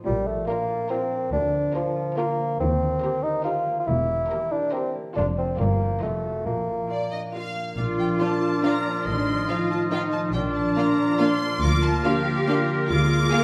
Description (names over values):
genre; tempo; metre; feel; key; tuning
cinematic, playful, whimsical film cue; 141 BPM; 3/4; straight; Bb major; A4 = 436 Hz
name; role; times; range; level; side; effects
concert harp; arpeggios; 0.0-13.4 s; F2 to C5; -32 LUFS; equal; none
warm bassoon; accompaniment; 0.1-7.3 s; F3 to F4; -28 LUFS; equal; none
rich studio cello section; bass; 0.1-13.4 s; D2 to Bb4; -31 LUFS; equal; none
warm chamber double bass section; bass; 0.1-13.2 s; E1 to Eb2; -30 LUFS; equal; none
warm studio violin section; melody; 0.5-13.4 s; C5 to D6; -35 LUFS; equal; none
rich studio violin section; second line; 0.5-13.4 s; F4 to F5; -37 LUFS; equal; none
rich studio viola section; accompaniment; 0.5-13.4 s; F3 to G4; -33 LUFS; equal; none
bright clarinet; second line; 7.8-13.4 s; F4 to Ab4; -35 LUFS; equal; none
mellow hollow silver concert flute; second line; 7.8-13.4 s; F6; -34 LUFS; equal; none
warm oboe; second line; 7.8-13.4 s; Bb4 to Eb5; -34 LUFS; equal; none
dark French horn section; sustained chords; 7.8-13.4 s; F3 to Eb4; -31 LUFS; equal; none
room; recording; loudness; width
wet recital hall reverb, RT60 1.4 s; none; -24 LUFS; mono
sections
0.0-7.8 A section; 7.8-13.4 A section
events
none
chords
0.1 Bb; 1.3 Bb/D; 2.6 Cm7/Eb; 3.9 C7/E; 5.2 F; 5.6 Gm7; 6.0 F7b9; 6.5 Bb; 9.1 F7/A; 10.3 Bb; 11.6 Bb/D; 12.9 Bb7/D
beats
| 0.06 0.49 0.91 | 1.33 1.75 2.18 | 2.60 3.02 3.45 | 3.87 4.30 4.73 | 5.16 5.59 6.02 | 6.46 6.90 7.34 | 7.78 8.21 8.64 | 9.07 9.50 9.92 | 10.35 10.77 11.20 | 11.62 12.04 12.47 | 12.89 13.32